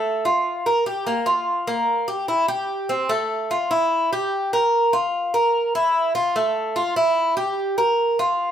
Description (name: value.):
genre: latin.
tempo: 147 BPM.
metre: 4/4.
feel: straight.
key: F major.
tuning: A4 = 441 Hz.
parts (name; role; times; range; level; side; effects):
Cuban tres; solo; 0.0-8.5 s; A3 to Bb4; -19 LUFS; equal; none.
room: light reverb.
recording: none.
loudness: -19 LUFS.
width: side -9 dB against mid.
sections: 0.0-3.1 A section; 3.1-8.5 B section.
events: none.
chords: none.